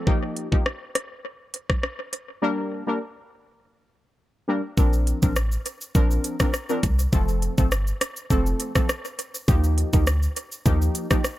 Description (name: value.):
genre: dancehall.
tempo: 102 BPM.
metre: 4/4.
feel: straight.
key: Bb major.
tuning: A4 = 437 Hz.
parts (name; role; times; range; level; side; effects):
synth brass stab; accompaniment; 0.0-11.2 s; F3 to Bb4; -26 LUFS; left 1 dB; chorus.
island pop drum kit; drums; 0.1-11.4 s; hi-hat, kick drum, rim click, shaker; -23 LUFS; equal; overdrive, analog delay.
warm 808-style bass; bass; 4.8-10.9 s; F1 to Eb2; -22 LUFS; equal; none.
room: little or no reverb.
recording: echo-heavy mix.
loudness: -21 LUFS.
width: side -15 dB against mid.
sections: 0.0-4.8 A section; 4.8-11.4 B section.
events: break 2.4-4.8.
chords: 0.1 Ebadd9; 2.4 Gm; 4.8 Bbadd9; 7.1 F; 9.5 Ebadd9.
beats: | 0.07 0.66 1.25 1.83 | 2.42 3.01 3.60 4.19 | 4.78 5.36 5.95 6.54 | 7.13 7.72 8.30 8.89 | 9.48 10.07 10.66 11.25.